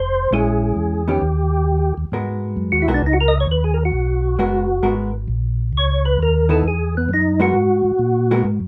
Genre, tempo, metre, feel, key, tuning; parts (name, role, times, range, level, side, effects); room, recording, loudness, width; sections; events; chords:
soul jazz organ trio; 133 BPM; 4/4; swing 66% on 8ths; G# minor; A4 = 440 Hz
percussive tonewheel organ; melody; 0.0-8.4 s; B3 to D#5; -21 LUFS; equal; slow rotary speaker, chorus vibrato
mellow tonewheel organ; bass; 0.0-8.7 s; F1 to A#2; -22 LUFS; equal; chorus vibrato, slow rotary speaker
vintage hollow-body jazz guitar; accompaniment; 0.3-8.4 s; D#3 to A#4; -24 LUFS; equal
moderate club reverb, RT60 0.6 s; -19 LUFS; mono
0.0-2.1 A section; 2.1-8.7 B section
tonewheel organ solo 2.1-8.7
0.3 A#m7b5; 1.2 D#; 2.1 G#m9; 5.7 C#m9; 7.5 G#7sus2